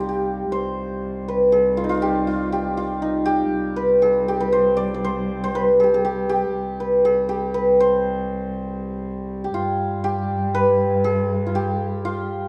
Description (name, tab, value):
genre	Persian modal ensemble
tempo	120 BPM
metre	3/4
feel	straight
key	C avaz esfahan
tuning	A4 = 440 Hz
part	santur	melody	0.0-12.5 s	Eb4 to D5	-22 LUFS	equal	none
part	dark cello	drone	0.0-12.5 s	C2 to G2	-30 LUFS	equal	none
room	moderate studio reverb, RT60 0.7 s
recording	dark, warm production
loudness	-21 LUFS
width	mono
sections	0.0-9.5 A section; 9.5-12.5 B section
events	none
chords	none